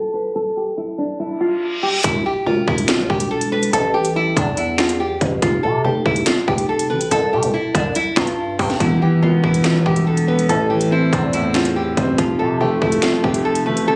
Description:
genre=hip hop, drill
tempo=142 BPM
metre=4/4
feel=half-time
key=E phrygian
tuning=A4 = 439 Hz
part: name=nylon-string guitar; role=melody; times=0.0-14.0 s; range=D4 to B4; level=-22 LUFS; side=equal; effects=delay
part: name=reverse cymbal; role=sound effects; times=1.6-2.0 s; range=none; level=-27 LUFS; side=equal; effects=none
part: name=growling 808-style bass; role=bass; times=2.0-13.9 s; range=E1 to C3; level=-24 LUFS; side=equal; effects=none
part: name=drill drum kit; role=drums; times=2.0-13.9 s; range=finger snaps, hi-hat, kick drum, snare drum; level=-23 LUFS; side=equal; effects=none
part: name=warm concert grand piano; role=accompaniment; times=8.8-14.0 s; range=E2 to C4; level=-20 LUFS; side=equal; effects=none
room=light reverb, digital ambience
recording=recorded on a phone in the room, club reverb, compression, low-pass filter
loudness=-18 LUFS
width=mono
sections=0.0-2.0 A section; 2.0-14.0 B section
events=filter sweep 0.0-2.0; reverse cymbal 1.6-2.0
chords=0.0 N.C.; 2.0 Em; 3.7 A5; 5.4 F; 7.1 C5; 8.8 E5; 10.5 Am; 12.2 F

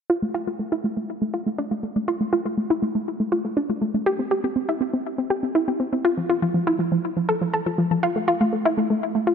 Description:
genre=house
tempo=121 BPM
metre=4/4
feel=straight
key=unclear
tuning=A4 = 441 Hz
part: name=analog pluck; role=arpeggios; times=0.1-9.3 s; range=F3 to A4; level=-21 LUFS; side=equal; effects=chorus, ping-pong delay
room=wet lush hall reverb, RT60 2.4 s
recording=none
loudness=-21 LUFS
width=side -7 dB against mid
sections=0.1-9.3 A section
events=filter sweep on synth arpeggio sound 0.1-9.3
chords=none

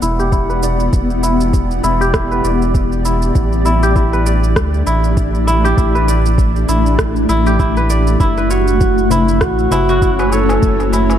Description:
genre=organic downtempo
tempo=99 BPM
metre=4/4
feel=swing 57% on 16ths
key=unclear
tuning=A4 = 440 Hz
part: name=granular cloud pad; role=sustained chords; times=0.0-11.2 s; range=A3 to F#5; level=-18 LUFS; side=left 1 dB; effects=built-in reverb, sidechain pumping
part: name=kora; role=arpeggios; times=0.0-11.2 s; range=E4 to D5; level=-19 LUFS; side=equal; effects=low-pass filter, digital delay
part: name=warm sub bass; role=bass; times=0.0-11.2 s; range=E1 to D2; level=-16 LUFS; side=equal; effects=sidechain pumping
part: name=electronic shaker and rim click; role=drums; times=0.0-11.2 s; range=none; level=-24 LUFS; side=right 2 dB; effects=overdrive, small room ambience
part: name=electronic kick drum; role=drums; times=0.3-10.8 s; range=none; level=-16 LUFS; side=equal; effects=overdrive, small room ambience
part: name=warm duduk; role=melody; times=8.2-10.9 s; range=E4 to A4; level=-17 LUFS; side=right 1 dB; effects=digital delay
part: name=darbuka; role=percussion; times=9.1-11.2 s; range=none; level=-23 LUFS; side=left 2 dB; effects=none
room=light reverb, small room ambience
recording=none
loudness=-12 LUFS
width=side -10 dB against mid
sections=0.0-11.2 A section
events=filter sweep on kora 0.0-11.2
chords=0.0 Em9; 3.4 A7sus4; 8.2 F#m7

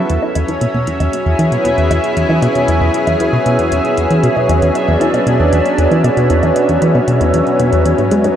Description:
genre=ambient, sequencer-driven space music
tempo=116 BPM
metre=4/4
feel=straight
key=unclear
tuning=A4 = 442 Hz
part: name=lush unison pad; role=sustained chords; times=0.0-8.4 s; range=F#3 to G#4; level=-14 LUFS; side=equal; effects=chorus
part: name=plucky analog bass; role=riff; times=0.0-8.3 s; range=E2 to G#3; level=-15 LUFS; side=equal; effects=tape echo
part: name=bubbling stepped-filter texture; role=texture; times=0.0-8.4 s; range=E5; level=-24 LUFS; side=right 2 dB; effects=chorus, built-in reverb
part: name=electronic hi-hat and woodblock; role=percussion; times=0.1-8.3 s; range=none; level=-27 LUFS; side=right 1 dB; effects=tape echo
room=wet plate reverb, RT60 3.5 s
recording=echo-heavy mix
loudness=-11 LUFS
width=side -10 dB against mid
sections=0.0-8.4 A section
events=none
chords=0.1 E

